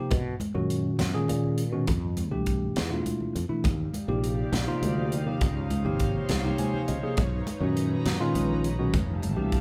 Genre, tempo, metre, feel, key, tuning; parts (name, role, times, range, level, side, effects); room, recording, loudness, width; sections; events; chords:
electric jazz fusion; 68 BPM (dotted quarters); 6/8; straight; A4 = 440 Hz
tine electric piano; accompaniment; 0.0-9.6 s; A#2 to Ab5; -31 LUFS; equal
sustaining fretless electric bass; bass; 0.1-9.6 s; F1 to B2; -32 LUFS; equal
crisp fusion drum kit; drums; 0.1-9.6 s; hi-hat, kick drum, snare drum; -33 LUFS; equal
congas; percussion; 0.1-9.6 s; -37 LUFS; equal
airy breathy pad; sustained chords; 3.8-9.6 s; Eb4 to A#5; -38 LUFS; equal; chorus
light reverb; band playing live in one room; -27 LUFS; mono
0.0-9.6 A section
tine electric piano fill 6.3-7.2
0.1 Bmaj9; 1.9 Fmaj9; 3.6 Ebmaj9; 5.4 Dbmaj9; 7.2 Bmaj9; 8.9 Fmaj9